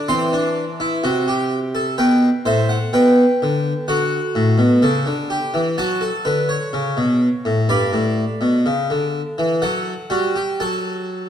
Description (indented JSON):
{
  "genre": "classical, baroque-style 3-part fugue for harpsichord",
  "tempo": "63 BPM",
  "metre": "4/4",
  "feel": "straight",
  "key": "G major",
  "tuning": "A4 = 440 Hz",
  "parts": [
    { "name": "harpsichord", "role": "solo", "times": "0.0-11.3 s", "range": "G2 to C6", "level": "-16 LUFS", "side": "equal", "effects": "none" }
  ],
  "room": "wet recital hall reverb, RT60 1.8 s",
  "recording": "dark, warm production",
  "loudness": "-16 LUFS",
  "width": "side -9 dB against mid",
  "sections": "0.0-11.3 A section",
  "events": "none",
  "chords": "0.1 C/E; 2.0 G; 3.9 D; 7.7 G; 9.6 F#m"
}